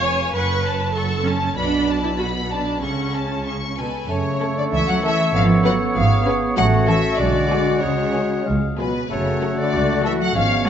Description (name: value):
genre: cinematic, playful, whimsical film cue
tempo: 96 BPM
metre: 2/4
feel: straight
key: F# minor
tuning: A4 = 437 Hz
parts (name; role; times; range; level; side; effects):
- rich studio violin section; melody; 0.0-10.7 s; G#4 to C#6; -28 LUFS; left 4 dB; none
- rich studio violin section; second line; 0.0-10.7 s; G#4 to B5; -27 LUFS; left 2 dB; none
- rich studio viola section; accompaniment; 0.0-10.7 s; F#3 to C#5; -26 LUFS; right 2 dB; none
- rich studio double bass section; bass; 0.0-10.7 s; E#1 to F#2; -24 LUFS; right 2 dB; none
- warm studio cello section; bass; 0.0-10.7 s; E#2 to F#3; -24 LUFS; right 2 dB; none
- silver concert flute; second line; 3.8-10.7 s; B4 to F#5; -27 LUFS; left 3 dB; none
- clear oboe; second line; 4.1-10.7 s; C#5 to F#5; -28 LUFS; right 1 dB; none
- warm clarinet; second line; 4.1-10.7 s; C#4 to A4; -28 LUFS; left 1 dB; none
- clear bassoon; accompaniment; 4.1-10.7 s; G#3 to B3; -28 LUFS; right 1 dB; none
- mellow French horn section; sustained chords; 4.1-10.7 s; F#3 to F#4; -25 LUFS; left 3 dB; none
room: wet scoring stage reverb, RT60 1.7 s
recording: nothing above 7.7 kHz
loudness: -17 LUFS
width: side -9 dB against mid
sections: 0.0-4.1 A section; 4.1-10.7 B section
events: none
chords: 0.3 F#m; 1.6 Bm7; 2.8 F#m/C#; 3.5 C#5; 4.1 F#m; 5.3 C#7/G#; 6.6 F#m/A; 7.2 G#m7b5/B; 7.8 C#sus4; 8.5 C#; 9.1 F#m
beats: | 0.34 0.95 | 1.57 2.19 | 2.82 3.46 | 4.10 4.72 | 5.35 5.96 | 6.57 7.19 | 7.83 8.46 | 9.10 9.73 | 10.36